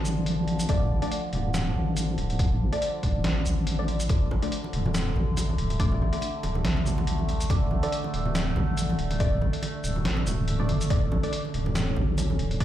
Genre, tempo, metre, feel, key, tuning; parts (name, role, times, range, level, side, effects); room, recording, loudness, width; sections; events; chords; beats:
deep dubstep; 141 BPM; 4/4; swing 56% on 16ths, half-time; D harmonic minor; A4 = 440 Hz
overtone-sweeping drone; sustained chords; 0.0-12.6 s; D3 to C#4; -33 LUFS; right 1 dB; chorus, built-in reverb
deep soft wobble bass; bass; 0.0-12.6 s; D1 to A1; -26 LUFS; equal; chorus
trip hop sampler-style drum kit; drums; 0.1-12.6 s; hi-hat, shaker, snare drum; -33 LUFS; equal
filtered dub chord stab; stabs; 0.7-12.6 s; A3 to D5; -34 LUFS; left 1 dB; phaser, analog chorus, dub echo
electronic kick drum; drums; 0.7-12.6 s; -27 LUFS; equal; overdrive
congas; percussion; 4.1-12.6 s; -33 LUFS; right 3 dB; dub echo
light reverb, digital ambience; played on a big sound system in a bare room, large studio reverb; -24 LUFS; side -12 dB against mid
0.0-12.6 A section
0.0 D5
0.27 | 0.69 1.12 1.54 1.97 | 2.39 2.82 3.25 3.67 | 4.10 4.52 4.95 5.37 | 5.80 6.22 6.65 7.07 | 7.50 7.92 8.35 8.78 | 9.20 9.63 10.05 10.48 | 10.90 11.33 11.76 12.18 | 12.61